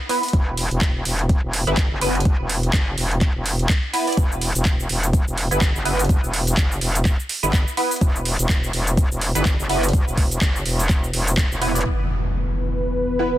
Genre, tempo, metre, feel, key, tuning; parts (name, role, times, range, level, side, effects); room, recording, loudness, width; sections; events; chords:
bass house; 125 BPM; 4/4; swing 57% on 16ths; E minor; A4 = 441 Hz
band-passed chord stab; stabs; 0.1-13.3 s; B3 to D5; -24 LUFS; right 1 dB; phaser, ensemble chorus, sidechain pumping, digital delay
garage drum kit; drums; 0.1-13.4 s; cabasa, crash cymbal, handclaps, hi-hat; -25 LUFS; right 1 dB; overdrive, low-pass filter on hats, low-pass filter on cymbals, low-pass filter on snare, low-pass filter on perc
metallic wobble bass; bass; 0.3-11.8 s; E1 to G1; -22 LUFS; equal; chorus, tube saturation, sidechain pumping
electronic kick drum; drums; 0.3-11.5 s; -19 LUFS; equal; overdrive
dark analog pad; sustained chords; 12.4-13.4 s; E3 to B4; -23 LUFS; equal; chorus, sidechain pumping
impact; sound effects; 11.9-13.4 s; -23 LUFS; equal
light reverb; dense, heavily limited modern master; -18 LUFS; side -14 dB against mid
0.0-11.9 A section; 11.9-13.4 B section
impact 11.9-13.4
0.0 E5